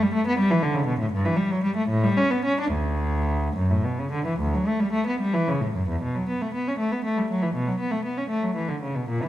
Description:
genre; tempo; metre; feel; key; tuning
classical, baroque-style suite movement for unaccompanied cello; 71-82 BPM (dotted quarters); 12/8; rubato; D major, B minor from 6.0 s; A4 = 440 Hz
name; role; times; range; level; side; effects
rich cello; solo; 0.0-9.3 s; D2 to D4; -22 LUFS; equal; none
room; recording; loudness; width
moderate recital hall reverb, RT60 1.6 s; none; -22 LUFS; side -13 dB against mid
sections
0.0-6.0 A section; 6.0-9.3 A section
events
none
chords
none

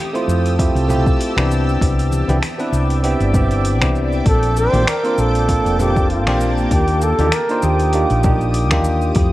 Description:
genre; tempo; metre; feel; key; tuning
sunset chillout; 98 BPM; 4/4; swing 55% on 16ths; unclear; A4 = 439 Hz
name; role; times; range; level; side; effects
shimmering ambient pad; sustained chords; 0.0-9.3 s; Bb3 to E6; -26 LUFS; equal; chorus, built-in reverb, phaser, vintage 12-bit sampler grit
barky tine electric piano; accompaniment; 0.1-9.3 s; A3 to C5; -20 LUFS; moving between left 3 dB and right 3 dB; auto-pan, tape echo
deep house drum kit; drums; 0.1-9.3 s; cabasa, finger snaps, hi-hat; -26 LUFS; equal; overdrive
woody fretless electric bass; bass; 0.3-9.3 s; F1 to F2; -18 LUFS; equal; none
electronic kick drum; drums; 0.6-9.3 s; none; -18 LUFS; equal; overdrive
congas; percussion; 0.9-8.8 s; none; -27 LUFS; right 2 dB; none
mellow flugelhorn; melody; 4.3-8.9 s; F4 to C5; -20 LUFS; equal; ping-pong delay
room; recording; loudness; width
moderate plate reverb, RT60 1.9 s; worn, warbling old tape, cassette tape, warbly pitch drift; -14 LUFS; side -16 dB against mid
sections
0.0-9.3 A section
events
none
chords
0.0 Fmaj9; 1.5 Cmaj9; 4.3 Bbmaj9; 6.7 Ebmaj9

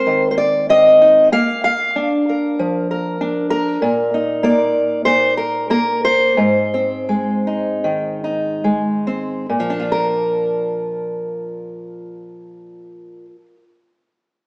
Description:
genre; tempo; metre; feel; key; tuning
folk, solo fingerstyle acoustic guitar; 69-98 BPM; 4/4; rubato; Bb mixolydian; A4 = 440 Hz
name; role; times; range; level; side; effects
fingerpicked steel-string acoustic guitar; solo; 0.0-13.6 s; Ab2 to F5; -14 LUFS; equal; none
room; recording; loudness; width
wet stone room reverb, RT60 1.3 s; band playing live in one room, small speaker sound; -14 LUFS; side -34 dB against mid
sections
0.0-9.5 A section; 9.5-12.9 B section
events
slowing down 3.8-9.5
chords
0.0 Ab; 1.3 Bb; 3.8 Eb5/Bb; 6.4 Ab; 9.5 Bb

